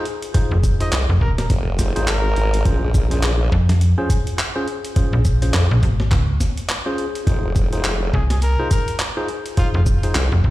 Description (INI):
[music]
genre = glitch hop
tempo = 104 BPM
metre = 4/4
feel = swing 59% on 16ths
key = Bb minor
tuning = A4 = 441 Hz
[part]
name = tine electric piano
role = stabs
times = 0.0-10.1 s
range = Db4 to C5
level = -26 LUFS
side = left 1 dB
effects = sidechain pumping, digital delay
[part]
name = boom bap sampler-style drum kit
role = drums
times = 0.1-10.3 s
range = handclaps, hi-hat, shaker, snare drum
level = -26 LUFS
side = equal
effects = none
[part]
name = electronic kick drum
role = drums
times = 0.3-10.5 s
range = none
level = -18 LUFS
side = equal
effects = none
[part]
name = slap-like FM bass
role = bass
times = 0.5-10.5 s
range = Eb1 to F2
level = -16 LUFS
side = equal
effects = none
[part]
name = warm trumpet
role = melody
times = 0.8-2.7, 8.1-9.8 s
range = F4 to Eb5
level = -29 LUFS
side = equal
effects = digital delay
[part]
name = formant-sweep wobble bass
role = bass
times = 0.9-10.3 s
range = F1 to F2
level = -19 LUFS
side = equal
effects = chorus
[sound]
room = little or no reverb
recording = played on a big sound system in a bare room, large studio reverb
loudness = -16 LUFS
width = side -17 dB against mid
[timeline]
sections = 0.0-10.5 A section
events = none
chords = 0.0 Fm7; 2.7 Bbm7; 7.3 Fm7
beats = | 0.34 0.92 1.50 2.08 | 2.65 3.23 3.81 4.38 | 4.96 5.54 6.11 6.69 | 7.27 7.84 8.42 9.00 | 9.58 10.15